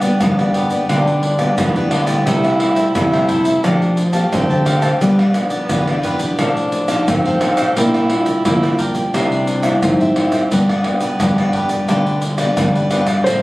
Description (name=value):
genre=samba and choro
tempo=87 BPM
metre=4/4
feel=straight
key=unclear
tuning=A4 = 440 Hz
part: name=breathy tenor saxophone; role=second line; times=0.0-12.6 s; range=B3 to E4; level=-21 LUFS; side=right 1 dB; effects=none
part: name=cavaquinho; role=accompaniment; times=0.0-13.4 s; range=D4 to A5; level=-24 LUFS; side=right 1 dB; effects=none
part: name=nylon-string guitar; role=accompaniment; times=0.0-13.4 s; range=G2 to G4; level=-22 LUFS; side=left 1 dB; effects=none
part: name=egg shaker, pandeiro, surdo and tamborim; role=percussion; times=0.0-13.4 s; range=none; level=-19 LUFS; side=equal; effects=none
part: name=nylon-string guitar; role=bass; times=0.2-13.4 s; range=G2 to Bb3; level=-19 LUFS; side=equal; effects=none
part: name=warm grand piano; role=melody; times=13.2-13.4 s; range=C5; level=-15 LUFS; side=equal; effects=none
room=moderate studio reverb, RT60 0.8 s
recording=recorded on a phone in the room, studio reverb, compression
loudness=-14 LUFS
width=side -19 dB against mid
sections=0.0-13.3 A section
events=tenor saxophone solo 0.0-13.3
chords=0.0 G; 2.3 C6; 3.6 Fadd9; 5.0 G7; 6.4 F7/A; 7.8 Bb6; 9.1 C; 10.5 G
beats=0.21 0.90 1.58 | 2.27 2.96 3.64 4.33 | 5.01 5.70 6.39 7.08 | 7.76 8.45 9.14 9.83 | 10.51 11.20 11.89 12.58 | 13.27